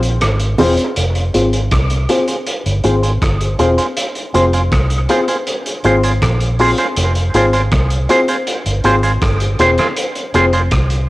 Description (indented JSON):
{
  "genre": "dub reggae",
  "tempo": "80 BPM",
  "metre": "4/4",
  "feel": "straight",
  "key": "F minor",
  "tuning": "A4 = 440 Hz",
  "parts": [
    { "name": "vintage muted fingered electric bass", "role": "bass", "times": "0.0-11.1 s", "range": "E1 to C2", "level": "-16 LUFS", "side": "equal", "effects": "tube saturation" },
    { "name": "cloth-damped thuddy drum kit", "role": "drums", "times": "0.0-11.1 s", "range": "hi-hat, kick drum, rim click", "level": "-20 LUFS", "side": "equal", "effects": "cassette tape" },
    { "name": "warm upright piano", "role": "stabs", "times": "0.6-10.5 s", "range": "C4 to C5", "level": "-18 LUFS", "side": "left 2 dB", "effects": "low-pass filter, cassette tape, dub echo" },
    { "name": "bongos", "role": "percussion", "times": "0.6-0.8 s", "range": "none", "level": "-21 LUFS", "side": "right 2 dB", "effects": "none" },
    { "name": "electric guitar with an envelope filter", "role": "accompaniment", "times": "1.3-10.6 s", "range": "C4 to C5", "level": "-19 LUFS", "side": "right 2 dB", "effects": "low-pass filter, cassette tape, dub echo" }
  ],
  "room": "light reverb, studio reverb",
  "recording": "home recording on cassette",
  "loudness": "-12 LUFS",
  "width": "side -18 dB against mid",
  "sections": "1.0-11.1 A section",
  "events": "break 0.0-1.0; filter sweep 1.0-11.1",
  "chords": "0.0 Fm"
}